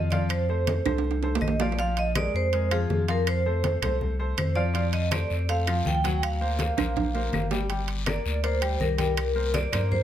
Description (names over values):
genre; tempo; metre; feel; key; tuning
Afro-Cuban jazz; 162 BPM; 4/4; straight; F major; A4 = 440 Hz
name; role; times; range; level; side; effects
vibraphone with medium hard mallets; melody; 0.0-10.0 s; Ab4 to G5; -29 LUFS; right 2 dB; none
clear baby grand piano; accompaniment; 0.0-10.0 s; F3 to G5; -32 LUFS; left 4 dB; none
warm sub bass; bass; 0.0-10.0 s; G1 to G2; -27 LUFS; equal; none
congas; percussion; 0.1-10.0 s; none; -33 LUFS; left 2 dB; none
timbales; percussion; 0.1-9.9 s; none; -31 LUFS; right 8 dB; none
claves; percussion; 0.3-9.9 s; none; -38 LUFS; left 8 dB; none
guiro; percussion; 4.7-10.0 s; none; -39 LUFS; left 7 dB; none
room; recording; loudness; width
light reverb; close, detailed microphones; -23 LUFS; side -10 dB against mid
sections
0.0-10.0 A section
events
drum fill 0.9-1.8, 6.8-7.7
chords
0.3 F; 1.8 Bbsus2; 3.3 F6; 6.2 D7alt; 7.7 Gm; 9.2 Csus2